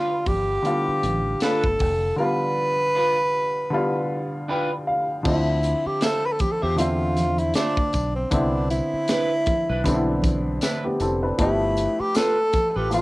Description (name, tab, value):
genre	lush 1970s-style soul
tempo	78 BPM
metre	4/4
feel	swing 58% on 16ths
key	D dorian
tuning	A4 = 440 Hz
part	breathy tenor saxophone	melody	0.0-13.0 s	C4 to B4	-23 LUFS	equal	cassette tape
part	warm baby grand piano	accompaniment	0.0-13.0 s	D3 to G5	-26 LUFS	left 1 dB	cassette tape
part	clean electric guitar	riff	0.0-12.9 s	D4 to E5	-27 LUFS	right 2 dB	lush chorus, cassette tape
part	fingered electric bass	bass	0.3-13.0 s	F1 to E2	-26 LUFS	equal	none
part	tight funk drum kit	drums	0.3-13.0 s	crash cymbal, hi-hat, kick drum, snare drum	-26 LUFS	equal	cassette tape
part	congas	percussion	0.3-13.0 s	none	-34 LUFS	right 2 dB	none
part	tambourine	percussion	5.3-13.0 s	none	-39 LUFS	left 3 dB	none
room	moderate booth ambience, RT60 0.2 s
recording	home recording on cassette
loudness	-20 LUFS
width	side -20 dB against mid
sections	0.0-5.3 A section; 5.3-13.0 B section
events	grand piano fill 4.1-5.3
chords	0.0 G7; 5.3 Dm9; 8.3 Cmaj9; 11.4 G9